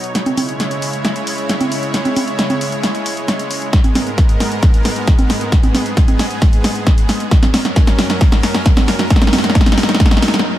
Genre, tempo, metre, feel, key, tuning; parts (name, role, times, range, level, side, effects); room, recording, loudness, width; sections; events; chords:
uplifting trance; 134 BPM; 4/4; straight; G# minor; A4 = 441 Hz
supersaw pad; sustained chords; 0.0-10.6 s; F#2 to C#5; -21 LUFS; right 1 dB; sidechain pumping
punchy analog drum machine; drums; 0.0-10.5 s; congas, hi-hat, snare drum; -16 LUFS; equal
electronic kick drum; drums; 3.7-10.1 s; -12 LUFS; equal
light reverb; -12 LUFS; side -13 dB against mid
0.0-10.6 A section
build-up 0.0-10.6; drum fill 0.0-10.4
0.1 C#m; 3.7 G#madd9; 7.3 F#